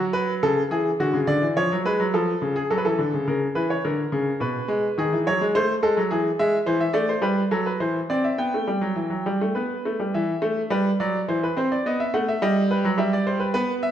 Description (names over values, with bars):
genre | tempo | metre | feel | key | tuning
classical, baroque-style two-part invention for grand piano | 106 BPM | 3/4 | straight | E minor from 6.7 s | A4 = 440 Hz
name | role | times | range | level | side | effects
bright grand piano | solo | 0.0-13.9 s | B2 to G5 | -21 LUFS | equal | none
room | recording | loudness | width
wet recital hall reverb, RT60 1.5 s | minimal, uncompressed stereo recording | -21 LUFS | side -10 dB against mid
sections
0.0-3.3 A section; 3.3-10.1 B section; 10.1-13.9 C section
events
none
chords
0.0 F#m; 1.0 Dmaj9/C#; 1.6 C#7/E#; 2.7 F#m; 3.3 C#m6; 4.4 G#m/B; 5.0 G#7/D#; 6.1 E; 6.7 Am/E; 7.8 C/E; 8.4 Em; 9.6 Gadd9; 10.1 Em; 11.3 Cmaj9/E; 11.9 B7; 13.0 Em/G